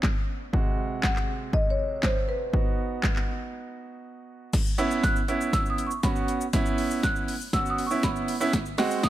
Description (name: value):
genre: dance-pop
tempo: 120 BPM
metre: 4/4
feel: straight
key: C# minor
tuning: A4 = 440 Hz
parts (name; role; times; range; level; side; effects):
- marimba with medium mallets; melody; 0.0-9.1 s; B4 to F#6; -31 LUFS; equal; ping-pong delay
- clear baby grand piano; accompaniment; 0.0-9.1 s; B#2 to F#4; -29 LUFS; right 3 dB; sidechain pumping
- house drum kit; drums; 0.0-9.1 s; crash cymbal, handclaps, hi-hat, kick drum, shaker, snare drum; -26 LUFS; equal; none
room: digital ambience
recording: high-pass filter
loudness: -24 LUFS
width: side -14 dB against mid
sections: 0.0-4.5 A section; 4.5-9.1 B section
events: break 3.5-4.5; build-up 4.5-9.1; drum fill 4.5-9.1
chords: 0.0 C#7(no3); 0.5 G#7; 2.5 B; 4.5 C#m7; 8.5 G#7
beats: 0.04 | 0.54 1.03 1.53 2.04 | 2.54 3.04 3.54 4.04 | 4.54 5.04 5.54 6.04 | 6.54 7.04 7.54 8.04 | 8.54 9.04